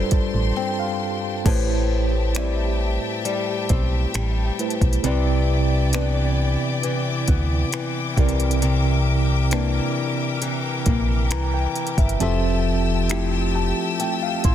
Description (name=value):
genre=contemporary R&B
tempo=67 BPM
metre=4/4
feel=straight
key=C major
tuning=A4 = 440 Hz
part: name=tine electric piano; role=accompaniment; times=0.0-14.5 s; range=C3 to C6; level=-25 LUFS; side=right 2 dB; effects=medium stereo tremolo
part: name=bright studio string section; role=sustained chords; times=0.0-14.5 s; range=G4 to E6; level=-29 LUFS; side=left 3 dB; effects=sidechain pumping
part: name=nylon-string guitar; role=arpeggios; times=0.0-14.5 s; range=G2 to G4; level=-27 LUFS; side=left 6 dB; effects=ping-pong delay
part: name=solid FM bass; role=bass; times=0.0-14.5 s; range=F1 to D2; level=-22 LUFS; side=equal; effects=none
part: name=smooth R&B drum kit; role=drums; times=0.1-14.5 s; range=crash cymbal, finger snaps, hi-hat, kick drum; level=-22 LUFS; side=equal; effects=soft clipping on snare
room=little or no reverb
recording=dense, heavily limited modern master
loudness=-19 LUFS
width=side -10 dB against mid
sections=0.0-1.5 A section; 1.5-14.5 B section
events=tine electric piano fill 0.1-1.5, 13.1-14.5; break 0.6-1.5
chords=0.0 G9sus4; 1.5 Am7; 5.0 Cmaj9; 8.2 C9; 12.2 Fmaj9